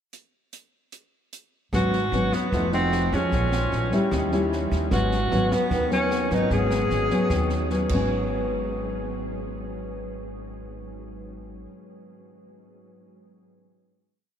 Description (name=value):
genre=bossa nova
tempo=150 BPM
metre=4/4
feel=straight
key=G# minor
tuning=A4 = 440 Hz
part: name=open jazz drum kit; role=drums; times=0.1-8.0 s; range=crash cymbal, hi-hat, kick drum, rim click, snare drum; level=-33 LUFS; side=right 1 dB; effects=none
part: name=breathy tenor saxophone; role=melody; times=1.7-7.7 s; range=B3 to G#4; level=-27 LUFS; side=equal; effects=none
part: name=nylon-string guitar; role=accompaniment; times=1.7-11.7 s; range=G#2 to Gb4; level=-26 LUFS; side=left 1 dB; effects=none
part: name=upright bass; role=bass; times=1.7-11.7 s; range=F1 to F2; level=-29 LUFS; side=equal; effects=none
room=wet huge ambient reverb, RT60 9.3 s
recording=in a vast, echoing space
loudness=-22 LUFS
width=side -9 dB against mid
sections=0.1-1.7 pickup bar; 1.7-8.1 A section; 8.1-11.3 final hit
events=none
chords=0.1 N.C.; 1.7 G#m7; 2.5 F7b9; 3.3 A#m7; 4.1 D#7b9; 4.9 G#m7